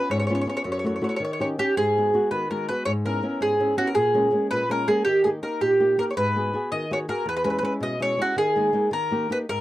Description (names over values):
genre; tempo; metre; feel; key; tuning
italian folk, Italian serenade; 109 BPM (dotted quarters); 6/8; straight; G# minor; A4 = 441 Hz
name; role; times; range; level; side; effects
mandolin; melody; 0.0-9.6 s; F#4 to D#5; -22 LUFS; right 1 dB; none
flamenco guitar; accompaniment; 0.0-9.6 s; E2 to G#4; -27 LUFS; left 1 dB; none
room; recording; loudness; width
light reverb; dry, close 1970s-style studio recording; -21 LUFS; side -15 dB against mid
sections
0.0-1.8 A section; 1.8-9.6 B section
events
none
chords
0.0 C#7; 0.7 F#m7; 1.2 D#7; 1.8 G#m7; 2.9 C#m7/G#; 4.0 A#m7; 5.1 D#; 6.2 G#m7; 7.3 E6; 8.4 D#sus4; 8.9 D#